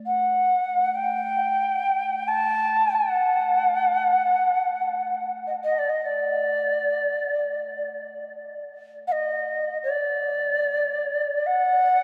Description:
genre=world meditative, free-time meditation music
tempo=free time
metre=none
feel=none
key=unclear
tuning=A4 = 438 Hz
part: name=bronze singing bowl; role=texture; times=0.0-1.2 s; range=A3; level=-50 LUFS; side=equal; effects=none
part: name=mellow Native American-style cedar flute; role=melody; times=0.1-12.0 s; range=D5 to A5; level=-24 LUFS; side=equal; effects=none
room=wet cathedral reverb, RT60 6.2 s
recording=in a vast, echoing space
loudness=-24 LUFS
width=mono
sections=0.0-12.0 A section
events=none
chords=none

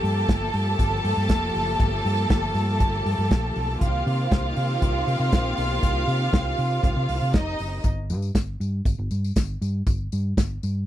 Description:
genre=disco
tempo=119 BPM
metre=4/4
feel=straight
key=unclear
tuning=A4 = 441 Hz
part: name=warm studio violin section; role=second line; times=0.0-7.8 s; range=Eb4 to A5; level=-26 LUFS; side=right 1 dB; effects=none
part: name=bright studio string section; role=sustained chords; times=0.0-7.8 s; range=Eb3 to G4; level=-31 LUFS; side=left 1 dB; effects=none
part: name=hollow-body short-scale fingered electric bass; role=bass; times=0.0-10.8 s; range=F1 to C3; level=-25 LUFS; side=equal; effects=none
part: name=warm soul drum kit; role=drums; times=0.0-10.5 s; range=hi-hat, kick drum, snare drum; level=-22 LUFS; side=equal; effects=none
part: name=tambourine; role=percussion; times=7.8-10.7 s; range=none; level=-42 LUFS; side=left 23 dB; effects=none
room=little or no reverb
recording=none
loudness=-21 LUFS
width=side -12 dB against mid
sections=0.0-7.8 A section; 7.8-10.9 B section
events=none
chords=0.0 Gm9; 3.8 Cm7; 7.8 N.C.

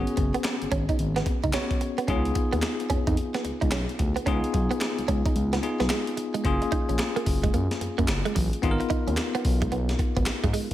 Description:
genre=R&B, new jack swing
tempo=110 BPM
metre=4/4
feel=swing 63% on 16ths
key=G# dorian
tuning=A4 = 440 Hz
part: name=bell-like tine electric piano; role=accompaniment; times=0.0-10.7 s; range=A#3 to C#5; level=-29 LUFS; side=left 3 dB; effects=medium stereo tremolo
part: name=direct-recorded clean electric guitar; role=riff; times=0.0-10.7 s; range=F#3 to D#4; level=-31 LUFS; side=right 6 dB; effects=ensemble chorus
part: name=smooth gliding synth bass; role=bass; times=0.0-10.7 s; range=F#1 to G#2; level=-28 LUFS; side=equal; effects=none
part: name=breakbeat sampler-style drum kit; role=drums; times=0.1-10.7 s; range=handclaps, hi-hat, kick drum, snare drum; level=-28 LUFS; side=equal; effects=gated reverb
room=light reverb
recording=none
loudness=-23 LUFS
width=side -13 dB against mid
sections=0.0-6.4 A section; 6.4-10.7 B section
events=kick muted 5.4-6.4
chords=0.0 G#m11; 2.1 C#9; 6.4 F#maj7; 8.6 G#m69

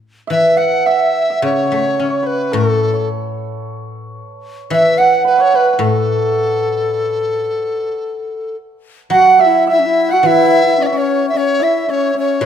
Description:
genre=chinese traditional, Chinese chamber ensemble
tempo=109 BPM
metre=4/4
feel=rubato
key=A gong mode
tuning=A4 = 440 Hz
part: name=large dizi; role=melody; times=0.3-12.5 s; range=A4 to F#5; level=-15 LUFS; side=equal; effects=none
part: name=hammered dulcimer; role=second line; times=0.3-12.5 s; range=A4 to F#5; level=-17 LUFS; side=right 6 dB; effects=none
part: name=guzheng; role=accompaniment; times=0.3-12.5 s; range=A2 to C#4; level=-20 LUFS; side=left 3 dB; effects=none
part: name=breathy bright low xiao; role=second line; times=9.1-12.5 s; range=C#4 to B4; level=-19 LUFS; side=left 10 dB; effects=none
room=moderate recital hall reverb, RT60 1.2 s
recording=minimal, uncompressed stereo recording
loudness=-12 LUFS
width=side -8 dB against mid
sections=0.0-9.1 A section; 9.1-12.5 B section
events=none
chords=none

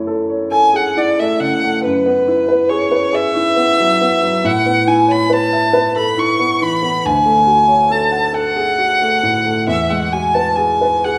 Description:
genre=classical, impressionist duo for violin and grand piano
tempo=46 BPM (dotted quarters)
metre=6/8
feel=rubato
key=unclear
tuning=A4 = 443 Hz
part: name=warm grand piano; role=accompaniment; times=0.0-11.2 s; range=D2 to F#5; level=-19 LUFS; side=equal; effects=none
part: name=rich violin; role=melody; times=0.5-11.2 s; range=B4 to C#6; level=-17 LUFS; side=equal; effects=none
room=wet recital hall reverb, RT60 1.4 s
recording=none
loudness=-15 LUFS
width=mono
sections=0.0-11.2 A section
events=none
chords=0.0 F#m9; 1.8 Eadd9/F#; 4.4 Aadd9; 7.0 Dmaj7#11; 9.7 Eadd9

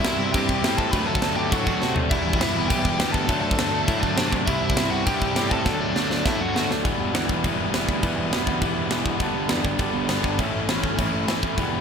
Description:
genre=punk rock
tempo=203 BPM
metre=4/4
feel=straight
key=E minor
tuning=A4 = 440 Hz
part: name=biting lead guitar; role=melody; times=0.0-6.7 s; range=D4 to B5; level=-28 LUFS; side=left 1 dB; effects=overdrive, slapback echo, ping-pong delay
part: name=distorted electric guitar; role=riff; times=0.0-11.8 s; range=G2 to E4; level=-24 LUFS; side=equal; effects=distortion
part: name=fuzz picked electric bass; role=bass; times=0.0-11.8 s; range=E1 to C3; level=-30 LUFS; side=equal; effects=overdrive
part: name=tight metal drum kit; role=drums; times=0.0-11.6 s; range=crash cymbal, kick drum, snare drum, toms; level=-25 LUFS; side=equal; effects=none
room=moderate concert hall reverb, RT60 2.0 s, studio reverb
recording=big arena sound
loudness=-20 LUFS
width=side -6 dB against mid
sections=0.0-6.8 A section; 6.8-11.8 B section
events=drum fill 1.8, 5.7-6.8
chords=0.0 C; 0.9 D; 2.1 Em; 3.3 D; 4.5 C; 5.7 D; 6.8 Em; 9.2 G; 10.4 A

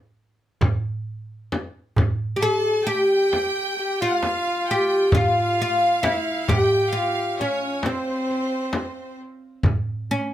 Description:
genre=Turkish makam ensemble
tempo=133 BPM (eighths)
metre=10/8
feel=straight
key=C makam hicaz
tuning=A4 = 440 Hz
part: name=darbuka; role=percussion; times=0.6-10.2 s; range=none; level=-26 LUFS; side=right 2 dB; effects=none
part: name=frame drum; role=percussion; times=0.6-9.8 s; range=none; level=-23 LUFS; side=left 1 dB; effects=none
part: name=oud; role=melody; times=2.4-10.3 s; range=C4 to A4-40c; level=-22 LUFS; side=equal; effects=tape echo
part: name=bright studio violin section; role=second line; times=2.4-9.2 s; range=C5 to A5-40c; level=-28 LUFS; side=right 2 dB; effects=none
part: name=warm kamancheh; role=second line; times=2.4-9.2 s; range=C4 to A4-33c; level=-28 LUFS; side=left 2 dB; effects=none
room=moderate studio reverb, RT60 0.5 s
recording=none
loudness=-20 LUFS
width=side -12 dB against mid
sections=0.0-9.6 A section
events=none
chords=none

